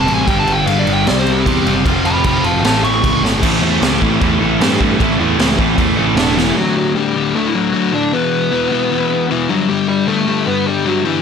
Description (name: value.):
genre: punk rock.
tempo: 153 BPM.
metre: 4/4.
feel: straight.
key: unclear.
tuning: A4 = 440 Hz.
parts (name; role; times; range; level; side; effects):
dark smooth lead guitar; melody; 0.0-3.2, 6.2-11.2 s; E3 to C#6; -18 LUFS; right 2 dB; overdrive.
crunchy overdriven guitar; riff; 0.0-11.2 s; D2 to C4; -17 LUFS; left 11 dB; none.
distorted electric guitar; riff; 0.0-6.5 s; F2 to C4; -19 LUFS; right 19 dB; distortion.
growling picked electric bass; bass; 0.0-6.5 s; E1 to G2; -20 LUFS; right 1 dB; overdrive.
raw garage drum kit; drums; 0.1-6.5 s; crash cymbal, kick drum, snare drum; -18 LUFS; right 1 dB; none.
high-gain distorted guitar; riff; 3.4-6.6 s; A2 to A4; -21 LUFS; right 3 dB; distortion.
room: little or no reverb.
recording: none.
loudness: -12 LUFS.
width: side -6 dB against mid.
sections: 0.0-3.4 A section; 3.4-6.6 B section; 6.6-11.2 C section.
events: half time 0.0-3.4; lead electric guitar solo 0.0-3.4; drum fill 3.2, 6.4.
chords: 0.3 G5; 1.1 C; 1.9 F5; 2.6 A; 6.6 D; 8.1 E5; 9.5 G.